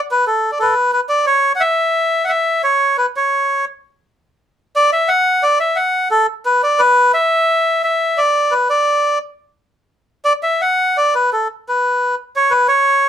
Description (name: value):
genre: andean folk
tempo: 87 BPM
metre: 2/4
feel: straight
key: B minor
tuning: A4 = 440 Hz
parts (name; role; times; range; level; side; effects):
- melodica; solo; 0.1-13.1 s; A4 to F#5; -13 LUFS; equal; none
room: moderate small room reverb, RT60 0.5 s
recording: none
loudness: -13 LUFS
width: side -9 dB against mid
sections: 0.0-1.3 A section; 1.3-12.3 A section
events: none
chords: none